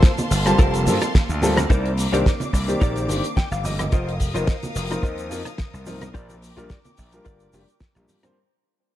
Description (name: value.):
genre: nu-disco, nu disco.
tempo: 108 BPM.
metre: 4/4.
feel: swing 54% on 16ths.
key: unclear.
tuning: A4 = 439 Hz.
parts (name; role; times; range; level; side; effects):
rich symphonic string section; sustained chords; 0.0-8.3 s; Bb3 to Eb6; -32 LUFS; equal; sidechain pumping.
direct-recorded clean electric guitar; riff; 0.0-8.3 s; Eb4 to G5; -29 LUFS; left 2 dB; analog chorus, tape echo.
damped 70s drum kit; drums; 0.0-8.3 s; hi-hat, rim click, shaker, snare drum; -26 LUFS; left 1 dB; none.
kick drum; drums; 0.0-7.9 s; none; -18 LUFS; equal; none.
tube shaker and congas; percussion; 0.0-8.3 s; none; -31 LUFS; right 2 dB; none.
gritty slap bass; bass; 0.3-8.1 s; F1 to G2; -24 LUFS; equal; overdrive.
warm baby grand piano; accompaniment; 0.5-8.4 s; Eb3 to A5; -25 LUFS; left 1 dB; sidechain pumping, tape echo.
room: light reverb.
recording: dark, warm production.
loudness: -19 LUFS.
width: side -13 dB against mid.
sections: 0.0-8.4 A section.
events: drop 0.0-8.4; fade-out 0.0-8.4; clean electric guitar fill 3.1-3.9.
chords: 0.0 Gm11; 1.7 Cm9; 3.9 F7sus4; 6.1 Bb6.